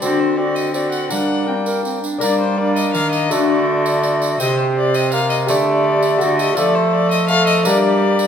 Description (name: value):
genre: classical, renaissance-style consort dance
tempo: 165 BPM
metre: 3/4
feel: straight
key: G minor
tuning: A4 = 441 Hz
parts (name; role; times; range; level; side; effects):
- warm violin; melody; 0.0-8.3 s; C5 to G5; -21 LUFS; left 5 dB; none
- tenor recorder; second line; 0.0-8.3 s; C4 to Bb4; -21 LUFS; right 4 dB; none
- clear bassoon; accompaniment; 0.0-8.3 s; A3 to C4; -20 LUFS; left 1 dB; none
- lute; accompaniment; 0.0-8.3 s; C3 to C5; -24 LUFS; left 7 dB; none
- rich cello; bass; 0.0-8.3 s; C3 to G3; -22 LUFS; right 2 dB; none
- tambourine; percussion; 0.0-8.3 s; none; -29 LUFS; right 5 dB; none
room: wet recital hall reverb, RT60 1.5 s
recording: minimal, uncompressed stereo recording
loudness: -14 LUFS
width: side -8 dB against mid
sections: 0.0-2.2 A section; 2.2-8.3 A section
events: none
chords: 0.0 D7; 1.1 Gm; 3.3 D; 4.4 C5; 5.5 Dsus4; 6.2 D; 6.6 F; 7.7 Gm